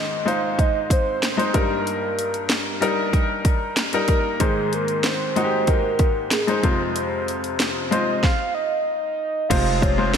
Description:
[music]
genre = piano-driven pop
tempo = 94 BPM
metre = 4/4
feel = straight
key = Ab major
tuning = A4 = 441 Hz
[part]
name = soft octave-layered synth lead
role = melody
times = 0.0-10.2 s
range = Ab4 to F5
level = -25 LUFS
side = right 2 dB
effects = chorus, phaser, slapback echo
[part]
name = bright baby grand piano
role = accompaniment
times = 0.0-10.2 s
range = F2 to C5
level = -23 LUFS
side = left 3 dB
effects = slapback echo
[part]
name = house drum kit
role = drums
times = 0.3-10.2 s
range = crash cymbal, hi-hat, kick drum, snare drum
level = -22 LUFS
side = equal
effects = overdrive
[part]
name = pipe organ, trumpet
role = sustained chords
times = 9.5-10.2 s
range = C3 to F4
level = -30 LUFS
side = right 2 dB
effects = none
[part]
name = round analog bass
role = bass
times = 9.5-10.2 s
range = F1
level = -24 LUFS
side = right 1 dB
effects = none
[sound]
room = moderate lush hall reverb, RT60 2.6 s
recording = big arena sound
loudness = -19 LUFS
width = side -7 dB against mid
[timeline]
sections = 0.0-9.5 A section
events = none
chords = 0.0 Ab; 1.5 Eb/G; 4.4 Ab; 6.6 Fm

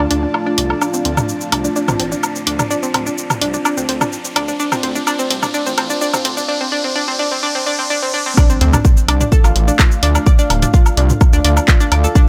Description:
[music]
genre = melodic techno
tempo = 127 BPM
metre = 4/4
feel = straight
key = D minor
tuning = A4 = 440 Hz
[part]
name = deep dark ambient pad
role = sustained chords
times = 0.0-12.3 s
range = A3 to G5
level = -28 LUFS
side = equal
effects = chorus, built-in reverb, sidechain pumping
[part]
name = analog pluck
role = arpeggios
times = 0.0-12.2 s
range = C4 to D5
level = -22 LUFS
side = equal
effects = chorus, sidechain pumping, delay
[part]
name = gritty driven synth bass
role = bass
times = 0.0-12.1 s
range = D1 to D2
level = -20 LUFS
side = equal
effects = sidechain pumping
[part]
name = riser and impact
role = sound effects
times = 0.0-10.3 s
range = none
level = -28 LUFS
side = equal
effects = none
[part]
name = airy breathy pad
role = texture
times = 0.0-6.5 s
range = F4 to A5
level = -30 LUFS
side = equal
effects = chorus, sidechain pumping
[part]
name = house drum kit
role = drums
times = 0.1-12.3 s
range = handclaps, hi-hat, shaker, toms, woodblock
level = -21 LUFS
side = equal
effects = none
[part]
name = electronic kick drum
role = drums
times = 8.4-12.3 s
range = none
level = -12 LUFS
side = equal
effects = none
[sound]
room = light reverb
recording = high-pass filter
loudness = -15 LUFS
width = mono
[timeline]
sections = 0.0-8.4 A section; 8.4-12.3 B section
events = build-up 0.0-8.4; riser 0.0-8.4; filter sweep on synth pluck 0.0-8.4; filter sweep on ambient pad 0.0-8.4; filter sweep 0.0-8.4; drop 8.4-12.3; impact 8.4-10.3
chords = 0.0 Dm

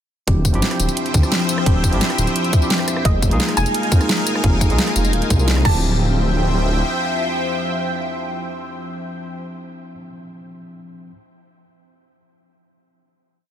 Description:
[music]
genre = liquid drum and bass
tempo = 173 BPM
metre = 4/4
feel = straight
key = unclear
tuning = A4 = 440 Hz
[part]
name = barky tine electric piano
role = accompaniment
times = 0.3-11.1 s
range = F3 to Ab4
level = -25 LUFS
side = equal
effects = ping-pong delay
[part]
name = lush unison pad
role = sustained chords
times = 0.5-9.4 s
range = F3 to Ab5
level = -24 LUFS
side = equal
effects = chorus, phaser
[part]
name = swelling detuned saw bass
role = bass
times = 0.3-6.8 s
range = D1 to F2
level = -19 LUFS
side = equal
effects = none
[part]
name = electronic kick drum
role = drums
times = 0.3-5.7 s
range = none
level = -16 LUFS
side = equal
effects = overdrive, studio reverb
[part]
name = pop drum kit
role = drums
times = 0.3-5.7 s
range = crash cymbal, hi-hat, rim click, snare drum, tambourine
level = -22 LUFS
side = equal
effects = studio reverb
[part]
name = soft round pluck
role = melody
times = 3.1-9.9 s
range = Eb5 to A5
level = -28 LUFS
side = right 2 dB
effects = wide subtle chorus, digital delay
[sound]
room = little or no reverb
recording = dense, heavily limited modern master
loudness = -16 LUFS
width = side -10 dB against mid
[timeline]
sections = 0.3-5.8 drop; 5.8-8.6 final hit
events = drop 0.3-5.8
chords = 0.3 Dm11; 3.0 Fm11; 5.7 Dm11

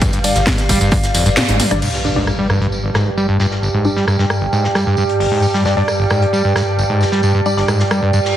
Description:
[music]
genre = driving peak-time techno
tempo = 133 BPM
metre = 4/4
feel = straight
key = unclear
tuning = A4 = 443 Hz
[part]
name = overdriven acid bass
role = riff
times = 0.0-8.2 s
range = G1 to G3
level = -17 LUFS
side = equal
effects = distortion, vintage 12-bit sampler grit, sidechain pumping
[part]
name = swarming drone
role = drone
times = 0.0-8.4 s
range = G2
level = -22 LUFS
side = equal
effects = built-in reverb, sidechain pumping
[part]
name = big rock drum kit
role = drums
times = 0.0-8.4 s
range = hi-hat, snare drum, tambourine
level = -27 LUFS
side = equal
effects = sidechain pumping on hats, high-pass filter on hats, low-pass filter on hats, high-pass filter on snare, low-pass filter on snare, sidechain pumping on perc, high-pass filter on perc, low-pass filter on perc, high-pass filter on room, low-pass filter on room
[part]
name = electronic kick drum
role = drums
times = 0.0-1.0 s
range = none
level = -17 LUFS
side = equal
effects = none
[part]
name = techno drum kit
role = drums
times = 0.0-8.0 s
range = crash cymbal, hi-hat, ride cymbal, rim click, snare drum, tambourine, toms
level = -20 LUFS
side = equal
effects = none
[part]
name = warbly tape-like pad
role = texture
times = 0.0-8.4 s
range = G4 to G5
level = -20 LUFS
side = right 3 dB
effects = chorus, built-in reverb, sidechain pumping
[part]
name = warm sub bass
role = bass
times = 0.1-1.8 s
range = G1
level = -22 LUFS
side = equal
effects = sidechain pumping, low-pass filter
[part]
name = filtered dub chord stab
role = stabs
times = 0.2-7.7 s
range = G3 to D5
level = -23 LUFS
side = left 2 dB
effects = phaser, sidechain pumping, dub echo
[part]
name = impact and reverse cymbal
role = sound effects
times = 1.8-3.6, 8.2-8.4 s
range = none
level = -26 LUFS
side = equal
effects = none
[sound]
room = moderate digital room reverb, RT60 1.2 s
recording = heavily compressed radio sound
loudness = -13 LUFS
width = side -11 dB against mid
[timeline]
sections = 0.0-1.8 A section; 1.8-8.4 B section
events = drop 0.0-1.8; kick drops out 1.4-1.8; band accent 1.4; drum fill 1.5-1.8; impact 1.8-3.6; reverse cymbal 8.2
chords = 0.0 G5

